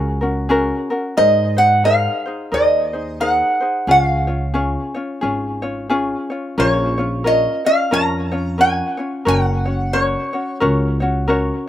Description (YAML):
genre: Hawaiian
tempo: 89 BPM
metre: 4/4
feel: swing 59% on 8ths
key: Db major, Bb minor from 6.6 s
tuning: A4 = 440 Hz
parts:
  - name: ukulele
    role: accompaniment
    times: 0.0-11.7 s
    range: Db4 to Db5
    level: -21 LUFS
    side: left 2 dB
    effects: slapback echo
  - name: upright bass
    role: bass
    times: 0.0-11.5 s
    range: Gb1 to Ab2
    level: -22 LUFS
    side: right 1 dB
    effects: none
  - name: lap resonator guitar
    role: melody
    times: 1.2-10.6 s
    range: Db5 to Bb5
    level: -16 LUFS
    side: right 1 dB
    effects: slapback echo
room: little or no reverb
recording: recorded outdoors, with no room sound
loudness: -15 LUFS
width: side -12 dB against mid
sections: 0.0-6.6 A section; 6.6-11.7 B section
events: none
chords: 0.0 Gbadd9; 1.2 Abadd9; 3.9 Db; 6.6 Bbm; 9.3 Gb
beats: 0.50 | 1.18 1.85 2.53 3.20 | 3.88 4.55 5.22 5.90 | 6.57 7.25 7.92 8.59 | 9.27 9.94 10.61 11.28